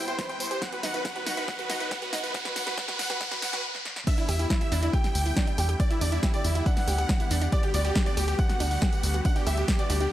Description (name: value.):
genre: uplifting trance.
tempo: 139 BPM.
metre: 4/4.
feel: straight.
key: E minor.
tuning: A4 = 441 Hz.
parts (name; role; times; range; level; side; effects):
supersaw chords; melody; 0.0-10.1 s; E4 to G5; -32 LUFS; equal; sidechain pumping, dub echo.
supersaw pad; sustained chords; 0.0-10.1 s; C3 to B4; -38 LUFS; equal; sidechain pumping.
riser; sound effects; 0.3-3.6 s; none; -34 LUFS; right 1 dB; none.
analog pluck; arpeggios; 0.1-10.0 s; D4 to B4; -36 LUFS; right 3 dB; chorus, sidechain pumping, dub echo.
punchy analog drum machine; drums; 0.1-10.1 s; crash cymbal, hi-hat, snare drum, tambourine; -33 LUFS; equal; overdrive, sidechain pumping on hats, sidechain pumping on perc, sidechain pumping on cymbals.
electronic kick drum; drums; 0.2-9.8 s; none; -26 LUFS; equal; overdrive.
bright concert grand piano; second line; 4.1-10.1 s; E4 to G5; -36 LUFS; equal; sidechain pumping, dub echo.
tight sequencer bass; bass; 4.3-10.1 s; D2 to E2; -26 LUFS; equal; tube saturation, sidechain pumping.
room: light reverb, digital ambience.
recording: high-pass filter.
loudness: -24 LUFS.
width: side -13 dB against mid.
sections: 0.0-4.1 A section; 4.1-10.1 B section.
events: build-up 0.0-4.1; drum fill 0.0-3.6, 3.7-4.1; filter sweep 0.0-4.1; riser 0.3-3.6; stop 3.6-4.1; drop 4.1-10.1.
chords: 0.0 Cmaj7; 0.6 B; 4.1 Em7; 7.5 Gmaj7/D.